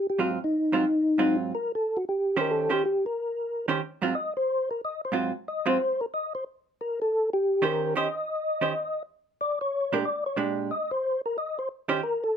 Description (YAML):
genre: jazz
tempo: 183 BPM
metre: 4/4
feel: swing 63% on 8ths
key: Eb mixolydian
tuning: A4 = 440 Hz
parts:
  - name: percussive tonewheel organ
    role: melody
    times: 0.0-12.4 s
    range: Eb4 to Eb5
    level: -26 LUFS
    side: left 1 dB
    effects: slow rotary speaker, chorus vibrato
  - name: vintage hollow-body jazz guitar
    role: accompaniment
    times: 0.2-12.0 s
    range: Ab2 to C5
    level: -26 LUFS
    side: right 5 dB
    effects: none
room: light reverb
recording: close, detailed microphones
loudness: -25 LUFS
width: side -8 dB against mid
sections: 0.0-12.4 A section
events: none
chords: 0.2 Ab6; 1.5 Eb13; 4.1 Ab6; 6.8 Eb6; 9.4 Bb6; 10.7 Eb6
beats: | 0.19 0.52 0.84 1.17 | 1.50 1.83 2.16 2.49 | 2.82 3.15 3.48 3.81 | 4.13 4.46 4.79 5.12 | 5.45 5.78 6.10 6.43 | 6.76 7.09 7.42 7.74 | 8.07 8.40 8.73 9.05 | 9.38 9.71 10.04 10.37 | 10.70 11.02 11.35 11.68 | 12.01 12.34